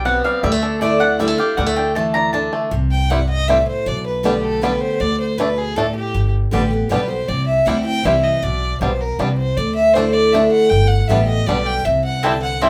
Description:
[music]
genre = bluegrass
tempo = 158 BPM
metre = 3/4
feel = straight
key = D mixolydian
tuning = A4 = 440 Hz
[part]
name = picked steel-string acoustic guitar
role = accompaniment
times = 0.0-12.7 s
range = G2 to G4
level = -24 LUFS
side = equal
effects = none
[part]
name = bluegrass banjo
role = arpeggios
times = 0.0-12.7 s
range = G3 to G4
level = -23 LUFS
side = equal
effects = none
[part]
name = mandolin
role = stabs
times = 0.0-2.6, 12.2-12.7 s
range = C4 to Bb5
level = -22 LUFS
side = equal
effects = none
[part]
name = upright bass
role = bass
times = 0.0-12.7 s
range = G1 to D2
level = -23 LUFS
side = equal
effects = none
[part]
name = dark fiddle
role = melody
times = 2.9-12.7 s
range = G4 to A5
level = -22 LUFS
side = equal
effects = none
[sound]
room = moderate studio ambience, RT60 0.5 s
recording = band playing live in one room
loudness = -18 LUFS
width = mono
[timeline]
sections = 0.0-2.7 A section; 2.7-12.7 A section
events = mandolin solo 0.0-2.7; fiddle solo 2.7-12.7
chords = 0.4 Dsus2; 2.7 C; 3.9 Gadd9/B; 5.0 D5; 6.1 Gadd9; 7.3 C; 8.4 G/B; 9.6 Dsus2; 10.7 Gadd9; 11.9 C

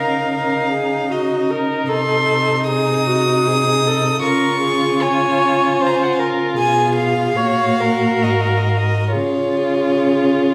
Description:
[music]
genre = classical, slow romantic movement for string quartet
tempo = 63-79 BPM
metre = 3/4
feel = rubato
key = Db major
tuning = A4 = 441 Hz
[part]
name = warm violin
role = melody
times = 0.0-10.5 s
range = Db5 to Eb6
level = -22 LUFS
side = equal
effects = none
[part]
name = dark violin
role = second line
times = 0.0-10.5 s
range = Eb4 to Gb4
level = -25 LUFS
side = equal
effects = none
[part]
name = warm viola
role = accompaniment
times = 0.0-10.5 s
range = Gb4 to Db5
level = -22 LUFS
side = equal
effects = none
[part]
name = dark cello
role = bass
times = 0.0-10.5 s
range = Ab2 to Db3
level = -23 LUFS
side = equal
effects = none
[sound]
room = wet recital hall reverb, RT60 1.3 s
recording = recorded in a church or concert hall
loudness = -17 LUFS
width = mono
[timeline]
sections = 0.0-10.5 A section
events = none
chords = 0.0 Eb5/Db; 1.9 Cdim7; 4.2 Db; 6.6 Fdim/Cb; 7.4 Gb/Bb; 8.2 Ab5; 9.1 Db

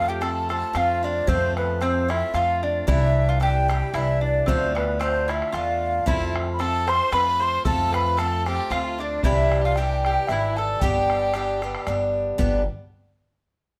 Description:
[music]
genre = celtic folk, Celtic waltz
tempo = 113 BPM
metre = 3/4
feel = swing 54% on 8ths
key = G mixolydian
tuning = A4 = 440 Hz
[part]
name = wooden flute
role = melody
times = 0.0-11.9 s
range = B4 to C6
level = -27 LUFS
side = equal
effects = none
[part]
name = mandolin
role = second line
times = 0.0-11.8 s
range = B3 to C5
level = -32 LUFS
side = equal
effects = none
[part]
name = picked swing-style acoustic guitar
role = accompaniment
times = 0.0-12.6 s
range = D2 to G4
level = -30 LUFS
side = equal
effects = none
[part]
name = upright bass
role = bass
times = 0.0-12.7 s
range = G1 to F2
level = -29 LUFS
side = equal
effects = none
[part]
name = bodhran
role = percussion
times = 0.2-12.7 s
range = none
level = -32 LUFS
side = equal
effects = none
[part]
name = bright fiddle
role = second line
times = 6.1-11.9 s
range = D4 to C5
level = -35 LUFS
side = equal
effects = none
[sound]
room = moderate studio reverb, RT60 0.7 s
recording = none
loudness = -23 LUFS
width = mono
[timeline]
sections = 0.0-12.4 A section; 12.4-13.8 B section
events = none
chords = 0.0 F; 2.9 Cadd9; 4.5 Dm; 6.1 F; 9.2 Cadd9; 10.8 G

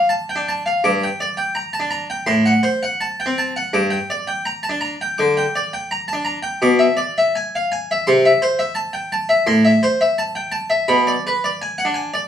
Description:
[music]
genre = classical, baroque-style suite movement for harpsichord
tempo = 84 BPM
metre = 4/4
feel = rubato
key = A minor from 6.6 s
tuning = A4 = 439 Hz
[part]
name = harpsichord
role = solo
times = 0.0-12.3 s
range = G2 to D6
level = -16 LUFS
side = equal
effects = none
[sound]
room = light reverb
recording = small room ambience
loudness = -16 LUFS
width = side -9 dB against mid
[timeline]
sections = 0.0-12.3 A section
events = none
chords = 0.0 Dm; 0.8 Gm; 2.3 F#dim/A; 3.7 Gm; 6.6 E7/B; 8.1 Am/C; 9.5 Am; 10.9 G#dim/B

